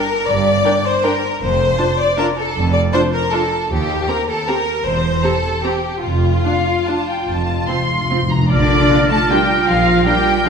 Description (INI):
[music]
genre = classical, orchestral ballroom waltz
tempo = 139-170 BPM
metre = 3/4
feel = rubato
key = Bb major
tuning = A4 = 440 Hz
[part]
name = warm symphonic violin section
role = second line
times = 0.0-10.5 s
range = D4 to D5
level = -18 LUFS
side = left 2 dB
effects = none
[part]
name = clear studio cello section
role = bass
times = 0.3-10.5 s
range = Eb2 to A3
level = -23 LUFS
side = right 3 dB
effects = none
[part]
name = rich symphonic double bass section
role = bass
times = 0.3-10.0 s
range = E1 to Eb2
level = -22 LUFS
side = right 3 dB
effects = none
[part]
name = warm symphonic violin section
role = melody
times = 0.6-10.5 s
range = D5 to C6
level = -21 LUFS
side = left 1 dB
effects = none
[part]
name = warm symphonic viola section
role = accompaniment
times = 0.6-10.5 s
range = C4 to Bb4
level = -24 LUFS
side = right 2 dB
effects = none
[part]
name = timpani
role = percussion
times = 7.3-8.4 s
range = F2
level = -20 LUFS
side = left 1 dB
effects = none
[part]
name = dark clarinet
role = second line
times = 8.5-10.5 s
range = F4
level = -23 LUFS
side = right 3 dB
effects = none
[part]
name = mellow hollow silver concert flute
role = second line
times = 8.5-10.5 s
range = F6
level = -22 LUFS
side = equal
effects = none
[part]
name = warm oboe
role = second line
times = 8.5-10.5 s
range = Bb4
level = -24 LUFS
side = right 2 dB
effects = none
[part]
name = clear French horn section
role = sustained chords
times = 8.9-10.5 s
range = Bb3 to F4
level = -27 LUFS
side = right 1 dB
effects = none
[sound]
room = wet recital hall reverb, RT60 1.8 s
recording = recorded in a church or concert hall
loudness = -14 LUFS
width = side -6 dB against mid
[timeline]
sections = 0.0-8.5 A section; 8.5-10.5 B section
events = timpani fill 7.3-8.5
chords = 0.0 Gm; 1.4 Dm/F; 3.7 Cm7/Eb; 4.9 C/E; 6.0 F5; 7.3 F; 8.5 Bb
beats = | 0.28 0.65 1.03 | 1.41 1.78 2.18 | 2.55 2.93 3.33 | 3.71 4.09 4.49 | 4.86 5.23 5.64 | 6.03 6.44 6.87 | 7.27 7.67 8.10 | 8.50 8.89 9.29 | 9.67 10.05 10.46